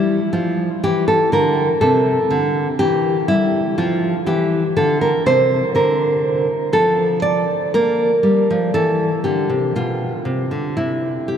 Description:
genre	classical, baroque-style dance for nylon-string guitar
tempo	61 BPM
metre	4/4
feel	rubato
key	unclear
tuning	A4 = 440 Hz
part	nylon-string guitar	solo	0.0-11.4 s	B2 to D5	-15 LUFS	equal	none
room	wet cathedral reverb, RT60 7.2 s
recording	in a vast, echoing space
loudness	-15 LUFS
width	side -8 dB against mid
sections	0.0-11.4 A section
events	none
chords	0.0 G5; 1.8 C; 3.8 F5; 5.8 Dm; 7.7 Gm; 9.7 Bdim; 10.8 N.C.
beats	0.83 1.82 2.81 | 3.80 4.78 5.76 6.74 | 7.74 8.74 9.75 10.77

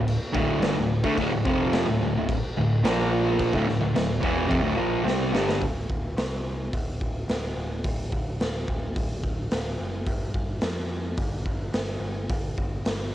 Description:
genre	garage rock duo or trio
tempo	108 BPM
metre	4/4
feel	straight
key	D minor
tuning	A4 = 440 Hz
part	fuzz guitar	riff	0.0-5.6 s	D2 to C4	-23 LUFS	equal	distortion
part	growling picked electric bass	bass	0.0-13.1 s	D1 to F2	-32 LUFS	equal	overdrive
part	raw garage drum kit	drums	0.1-13.0 s	crash cymbal, hi-hat, kick drum, snare drum	-28 LUFS	equal	cassette tape
room	light reverb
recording	home recording on cassette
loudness	-24 LUFS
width	side -12 dB against mid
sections	0.0-5.6 A section; 5.6-13.1 B section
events	drum fill 5.1-5.6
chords	0.0 Dm; 2.8 Bb5; 3.5 Dm; 5.6 N.C.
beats	0.07 0.62 | 1.18 1.73 2.28 2.83 | 3.39 3.94 4.50 5.05 | 5.61 6.16 6.72 7.28 | 7.83 8.39 8.95 9.51 | 10.06 10.62 11.18 11.73 | 12.29 12.85

